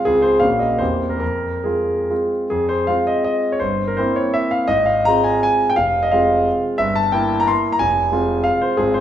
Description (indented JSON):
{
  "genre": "classical, romantic triple-time dance for piano with dotted rhythms",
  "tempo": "128-195 BPM",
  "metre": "3/4",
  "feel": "rubato",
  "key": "F minor",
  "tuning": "A4 = 440 Hz",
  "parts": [
    { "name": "clear concert grand piano", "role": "solo", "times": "0.0-9.0 s", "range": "F1 to C6", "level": "-16 LUFS", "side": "equal", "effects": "none" }
  ],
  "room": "wet recital hall reverb, RT60 1.4 s",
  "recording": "minimal, uncompressed stereo recording",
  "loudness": "-16 LUFS",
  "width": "side -10 dB against mid",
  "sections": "0.0-2.5 A section; 2.5-9.0 A section",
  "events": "none",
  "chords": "0.1 Dbmaj7; 0.4 Gb/Bb; 0.8 C7/E; 1.2 Fm; 3.6 C7/G; 4.7 Fm/Ab; 5.8 Fm; 6.8 Edim/G; 7.8 Fm"
}